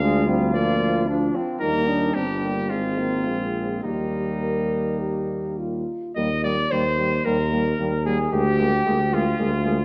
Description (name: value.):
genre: classical, brass quintet.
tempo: 101-114 BPM.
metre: 4/4.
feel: rubato.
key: Eb major.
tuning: A4 = 436 Hz.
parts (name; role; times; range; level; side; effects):
clear trumpet; melody; 0.0-9.8 s; Eb4 to F5; -30 LUFS; equal; none.
mellow flugelhorn; second line; 0.0-9.8 s; Bb3 to Eb5; -30 LUFS; equal; none.
mellow French horn; accompaniment; 0.0-9.8 s; Bb3 to Bb4; -31 LUFS; equal; none.
warm trombone; accompaniment; 0.0-9.8 s; F3 to Bb3; -31 LUFS; equal; none.
warm tuba; bass; 0.0-9.8 s; G1 to Eb2; -28 LUFS; equal; none.
room: moderate scoring stage reverb, RT60 2.1 s.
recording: dark, warm production.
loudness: -23 LUFS.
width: mono.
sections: 0.0-6.2 A section; 6.2-9.8 B section.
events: none.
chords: 0.0 Bb7/D; 1.6 Eb; 2.7 Ab; 3.3 Bb5; 3.8 Eb; 8.3 Bb7/D.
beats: 0.02 0.55 1.08 | 1.62 2.15 2.71 3.27 | 3.85 4.43 5.02 5.60 | 6.17 6.72 7.26 7.80 | 8.33 8.87 9.40.